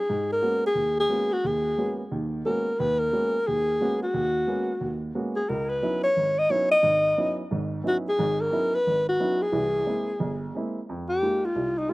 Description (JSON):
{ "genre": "jazz", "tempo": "178 BPM", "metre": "4/4", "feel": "swing 64% on 8ths", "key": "G# minor", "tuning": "A4 = 435 Hz", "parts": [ { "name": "breathy alto saxophone", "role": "melody", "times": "0.0-11.9 s", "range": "Eb4 to D#5", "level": "-23 LUFS", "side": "left 1 dB", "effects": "slapback echo" }, { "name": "warm baby grand piano", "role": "accompaniment", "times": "0.1-11.9 s", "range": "G1 to G4", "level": "-29 LUFS", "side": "right 2 dB", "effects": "slapback echo" } ], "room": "light reverb", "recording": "recorded outdoors, with no room sound", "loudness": "-23 LUFS", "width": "side -20 dB against mid", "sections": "0.1-10.9 A section; 10.9-11.9 B section", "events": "alto saxophone solo 10.9-11.9", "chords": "0.1 G#m11; 5.5 C#m11; 9.5 C7b13; 10.9 Fm11", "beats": "| 0.07 0.41 0.75 1.09 | 1.43 1.76 2.10 2.44 | 2.78 3.12 3.45 3.79 | 4.13 4.47 4.80 5.14 | 5.48 5.82 6.16 6.49 | 6.83 7.17 7.50 7.84 | 8.18 8.52 8.85 9.19 | 9.53 9.87 10.20 10.54 | 10.88 11.21 11.55 11.89" }